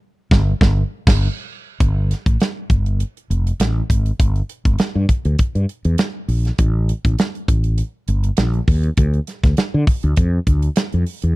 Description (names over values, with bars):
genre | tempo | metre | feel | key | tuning
polished 1980s jazz-funk pop | 100 BPM | 4/4 | swing 54% on 16ths | unclear | A4 = 440 Hz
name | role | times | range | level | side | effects
mellow fretless electric bass | bass | 0.3-11.3 s | F1 to D3 | -17 LUFS | equal | none
modern studio drum kit | drums | 0.3-11.4 s | crash cymbal, hi-hat, kick drum, snare drum | -17 LUFS | equal | none
room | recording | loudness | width
little or no reverb | dry, close 1970s-style studio recording | -16 LUFS | side -20 dB against mid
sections
0.0-1.8 A section; 1.8-11.4 B section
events
band accent 0.0-1.8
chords
none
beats
0.01 0.61 1.21 | 1.80 2.40 3.00 3.60 | 4.20 4.79 5.39 5.99 | 6.59 7.18 7.78 8.38 | 8.98 9.58 10.18 10.77